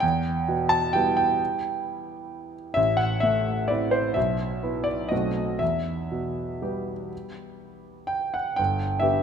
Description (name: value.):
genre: classical, piano waltz.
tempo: 117-142 BPM.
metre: 3/4.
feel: rubato.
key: E minor.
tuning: A4 = 439 Hz.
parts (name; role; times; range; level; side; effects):
clear concert grand piano; solo; 0.0-9.2 s; G1 to A5; -23 LUFS; right 1 dB; none.
room: moderate recital hall reverb, RT60 1.9 s.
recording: none.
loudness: -23 LUFS.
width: side -7 dB against mid.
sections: 0.0-8.6 A section.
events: none.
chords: 0.0 Em; 2.8 Am; 4.2 E5/B; 5.1 B7b9; 5.6 Em; 8.6 G.